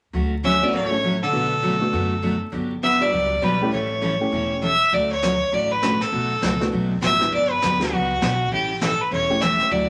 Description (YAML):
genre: country, western swing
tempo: 200 BPM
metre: 4/4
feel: swing 61% on 8ths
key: D major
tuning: A4 = 438 Hz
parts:
  - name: picked steel-string acoustic guitar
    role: accompaniment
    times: 0.1-9.9 s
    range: B2 to A4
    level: -28 LUFS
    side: equal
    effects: none
  - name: upright bass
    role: bass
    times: 0.1-9.9 s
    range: E1 to F#2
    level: -32 LUFS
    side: equal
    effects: none
  - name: clear fiddle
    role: melody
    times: 0.4-9.9 s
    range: F#4 to E5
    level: -23 LUFS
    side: equal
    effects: none
  - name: archtop guitar, miked and amplified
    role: second line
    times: 0.4-4.6 s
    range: D3 to C#4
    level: -31 LUFS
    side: equal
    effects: none
  - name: honky-tonk upright piano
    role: accompaniment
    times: 0.6-9.7 s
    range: G3 to A4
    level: -30 LUFS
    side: equal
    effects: none
  - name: jazz brush drum kit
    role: drums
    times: 4.9-9.9 s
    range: brushed snare drum, hi-hat, snare drum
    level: -32 LUFS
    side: equal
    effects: none
room: wet studio reverb, RT60 0.7 s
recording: vinyl crackle, lossy compression artefacts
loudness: -21 LUFS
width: mono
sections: 0.1-4.9 A section; 4.9-9.9 B section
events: none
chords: 0.1 Dmaj7; 1.3 Bm7; 2.5 Gmaj7; 3.7 A7; 4.9 Dmaj7; 6.1 Bm7; 7.3 Gmaj7; 8.5 A7